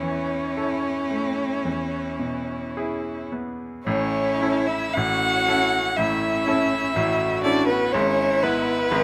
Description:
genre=classical, slow romantic movement for piano quartet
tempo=54-62 BPM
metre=4/4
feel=rubato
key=A major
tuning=A4 = 437 Hz
part: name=warm violin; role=melody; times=0.0-9.0 s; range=E4 to F#5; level=-28 LUFS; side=equal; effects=none
part: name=rich cello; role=second line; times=0.0-9.0 s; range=C#4 to G#4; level=-32 LUFS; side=equal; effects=none
part: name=warm violin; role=second line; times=0.0-9.0 s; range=B3 to C#5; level=-30 LUFS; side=equal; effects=none
part: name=bright grand piano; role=accompaniment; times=0.0-9.0 s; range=G#1 to B4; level=-28 LUFS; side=equal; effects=none
room=little or no reverb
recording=close, detailed microphones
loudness=-23 LUFS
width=mono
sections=0.0-3.9 A section; 3.9-9.0 B section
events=none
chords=0.0 A/E; 1.7 E; 3.9 A; 7.9 E/G#

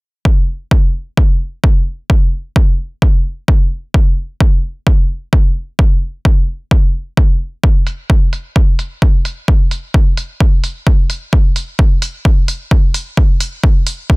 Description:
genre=bass house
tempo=130 BPM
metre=4/4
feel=swing 57% on 16ths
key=none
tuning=none
part: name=electronic kick drum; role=drums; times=0.3-14.2 s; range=none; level=-10 LUFS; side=equal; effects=none
part: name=electronic hi-hat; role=drums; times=7.9-14.0 s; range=none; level=-23 LUFS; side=right 2 dB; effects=low-pass filter on hats, low-pass filter on room
room=little or no reverb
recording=dense, heavily limited modern master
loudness=-12 LUFS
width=side -27 dB against mid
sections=0.3-14.2 A section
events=none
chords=none

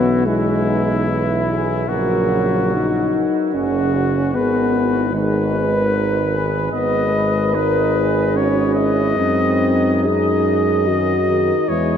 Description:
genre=classical, hymn-like piece for brass band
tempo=65-77 BPM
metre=3/4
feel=rubato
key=G# minor from 6.7 s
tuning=A4 = 440 Hz
part: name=clear cornet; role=melody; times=0.0-12.0 s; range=E4 to D#5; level=-23 LUFS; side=left 4 dB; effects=none
part: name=mellow French horn section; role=second line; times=0.0-12.0 s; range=C#4 to B4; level=-24 LUFS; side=right 4 dB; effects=none
part: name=dark euphonium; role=accompaniment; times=0.0-12.0 s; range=F#3 to G#4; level=-20 LUFS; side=left 2 dB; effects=none
part: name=mellow trombone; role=accompaniment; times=0.0-12.0 s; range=C#3 to B3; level=-25 LUFS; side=right 3 dB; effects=none
part: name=warm tuba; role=bass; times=0.0-12.0 s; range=F#1 to F#2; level=-22 LUFS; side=right 1 dB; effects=none
room=wet huge ambient reverb, RT60 8.4 s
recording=in a vast, echoing space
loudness=-15 LUFS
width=side -8 dB against mid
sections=0.0-12.0 A section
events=none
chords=0.0 Emaj7/B; 1.9 F#/A#; 4.3 G#m; 9.2 G#7/F#

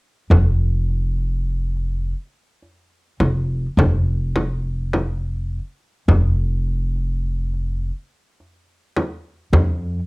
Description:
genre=Turkish makam ensemble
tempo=104 BPM (eighths)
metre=10/8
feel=straight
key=unclear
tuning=A4 = 440 Hz
part: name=upright bass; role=bass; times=0.3-10.0 s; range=F1 to F2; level=-20 LUFS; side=equal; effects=none
part: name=darbuka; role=percussion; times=0.3-9.8 s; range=none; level=-23 LUFS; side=equal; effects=none
part: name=frame drum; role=percussion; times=0.3-9.8 s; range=none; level=-18 LUFS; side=equal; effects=none
room=little or no reverb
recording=home recording on cassette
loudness=-18 LUFS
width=side -28 dB against mid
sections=0.3-10.1 A section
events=none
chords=none

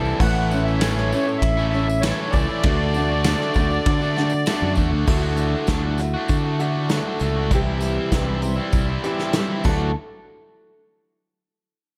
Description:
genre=folk rock and heartland rock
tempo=98 BPM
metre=4/4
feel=straight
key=D major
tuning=A4 = 440 Hz
part: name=pedal steel guitar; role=second line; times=0.0-0.2, 9.7-9.9 s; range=A4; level=-35 LUFS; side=equal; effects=none
part: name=picked steel-string acoustic guitar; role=accompaniment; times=0.0-9.9 s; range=A2 to G4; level=-28 LUFS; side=equal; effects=none
part: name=biting overdriven guitar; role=riff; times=0.0-9.9 s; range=A2 to F#4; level=-30 LUFS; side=equal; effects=none
part: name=fingered electric bass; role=bass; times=0.0-9.9 s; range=A1 to D3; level=-25 LUFS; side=equal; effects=none
part: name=tambourine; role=percussion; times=0.1-9.9 s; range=none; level=-45 LUFS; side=equal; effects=none
part: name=accordion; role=melody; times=0.2-4.7 s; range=C#5 to F#5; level=-28 LUFS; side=equal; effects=light tremolo tuning
part: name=soft brush drum kit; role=drums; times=0.2-9.8 s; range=crash cymbal, hi-hat, kick drum, ride cymbal, snare drum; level=-26 LUFS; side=equal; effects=none
room=light reverb, studio ambience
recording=dark, warm production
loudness=-21 LUFS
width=mono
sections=0.0-5.1 A section; 5.1-10.0 B section; 10.0-12.0 C section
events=none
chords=0.2 A; 2.6 D; 5.1 Dadd9; 7.5 C; 9.7 Dadd9; 10.0 N.C.

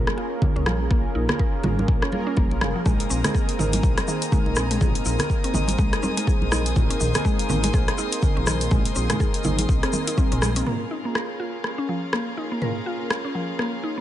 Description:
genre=afro house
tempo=123 BPM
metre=4/4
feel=swing 58% on 16ths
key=Bb minor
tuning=A4 = 441 Hz
part: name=mallet-like synth pluck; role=arpeggios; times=0.0-14.0 s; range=Eb3 to Bb4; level=-29 LUFS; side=equal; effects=chorus, cassette tape, sidechain pumping, ping-pong delay
part: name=mellow synth brass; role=stabs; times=0.0-14.0 s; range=Bb3 to Bb4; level=-29 LUFS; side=right 2 dB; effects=chorus, sidechain pumping, ping-pong delay
part: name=dark detuned saw bass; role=bass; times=0.0-10.6 s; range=F1 to Db2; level=-26 LUFS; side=equal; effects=sidechain pumping
part: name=deep house drum kit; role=drums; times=0.1-13.7 s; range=hi-hat, rim click, toms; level=-28 LUFS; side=left 1 dB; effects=none
part: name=congas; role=percussion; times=0.1-10.5 s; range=none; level=-29 LUFS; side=right 2 dB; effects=none
part: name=electronic kick drum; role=drums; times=0.4-10.3 s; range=none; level=-22 LUFS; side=equal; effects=none
part: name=warm studio string section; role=sustained chords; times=2.9-14.0 s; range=Db4 to Eb6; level=-33 LUFS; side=left 1 dB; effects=sidechain pumping
part: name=egg shaker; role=percussion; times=2.9-10.6 s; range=none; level=-34 LUFS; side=left 3 dB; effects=none
room=light reverb, digital ambience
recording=nothing above 10.8 kHz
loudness=-20 LUFS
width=side -12 dB against mid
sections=0.0-10.7 A section; 10.7-14.0 B section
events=filter sweep on analog polysynth 10.7-14.0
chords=0.0 Bbm7; 2.9 Abadd9; 10.7 Bbm7

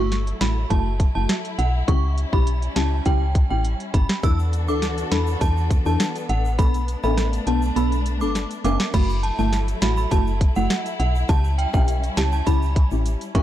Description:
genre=dancehall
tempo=102 BPM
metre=4/4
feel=straight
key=unclear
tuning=A4 = 439 Hz
part: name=synth chime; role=melody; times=0.0-13.4 s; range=F#5 to E6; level=-28 LUFS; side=right 3 dB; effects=ensemble chorus, ping-pong delay
part: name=deep mellow chord stab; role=accompaniment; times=0.0-13.4 s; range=A3 to A4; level=-27 LUFS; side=left 1 dB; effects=chorus, phaser
part: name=warm symphonic string section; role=sustained chords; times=0.0-13.4 s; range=E3 to A4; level=-32 LUFS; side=left 2 dB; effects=sidechain pumping
part: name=woody FM bass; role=bass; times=0.0-13.4 s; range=F#1 to E2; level=-22 LUFS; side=equal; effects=none
part: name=island pop drum kit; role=drums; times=0.1-13.4 s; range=crash cymbal, hi-hat, kick drum, rim click, snare drum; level=-21 LUFS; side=equal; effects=vintage 12-bit sampler grit
part: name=tube shaker and timbales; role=percussion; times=4.2-13.4 s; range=none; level=-35 LUFS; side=right 1 dB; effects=none
room=digital ambience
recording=dark, warm production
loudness=-19 LUFS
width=side -12 dB against mid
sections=0.0-8.9 A section; 8.9-13.4 B section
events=kick muted 7.8-8.9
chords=0.0 F#m7; 1.9 C#dim; 4.2 E7sus4; 6.6 Bm7; 8.9 F#m7; 11.3 C#dim

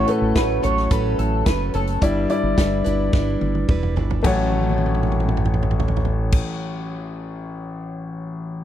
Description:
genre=piano-driven pop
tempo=108 BPM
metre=4/4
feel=straight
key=A mixolydian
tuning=A4 = 440 Hz
part: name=electric guitar at the edge of break-up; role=melody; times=0.0-2.0 s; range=A4 to C#5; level=-24 LUFS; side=equal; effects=analog chorus
part: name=clear concert grand piano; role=accompaniment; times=0.0-8.6 s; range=A1 to D5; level=-24 LUFS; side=left 4 dB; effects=none
part: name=picked plugged-in steel-string acoustic guitar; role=riff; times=0.0-7.0 s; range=A2 to B4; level=-27 LUFS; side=right 8 dB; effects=none
part: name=fingered electric bass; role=bass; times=0.0-6.4 s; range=E1 to A1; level=-23 LUFS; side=equal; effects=none
part: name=natural country drum kit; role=drums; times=0.1-7.9 s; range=crash cymbal, hi-hat, kick drum, snare drum, toms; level=-23 LUFS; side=equal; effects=none
room=light reverb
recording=dry, close 1970s-style studio recording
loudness=-18 LUFS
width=side -11 dB against mid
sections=0.0-4.2 A section; 4.2-6.5 B section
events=drum fill 3.1-4.2, 4.5-6.3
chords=0.0 A6; 2.0 Em7/G; 4.2 A6

